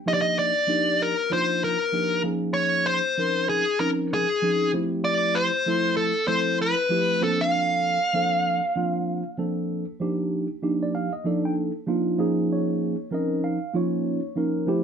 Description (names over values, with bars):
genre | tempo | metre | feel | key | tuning
jazz | 96 BPM | 4/4 | swing 56% on 16ths | F mixolydian | A4 = 440 Hz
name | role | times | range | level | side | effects
mellow tine electric piano | accompaniment | 0.0-14.8 s | F3 to G5 | -25 LUFS | right 1 dB | phaser
dark smooth lead guitar | melody | 0.1-9.4 s | Ab4 to F5 | -22 LUFS | left 1 dB | overdrive
room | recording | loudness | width
moderate studio reverb, RT60 0.6 s | band playing live in one room | -22 LUFS | side -7 dB against mid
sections
0.0-10.0 A section; 10.0-14.8 B section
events
none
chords
0.1 F13sus4; 2.2 Eb13sus4; 4.7 G13sus4; 7.2 C13sus4; 10.0 F13sus4; 12.2 Eb13sus4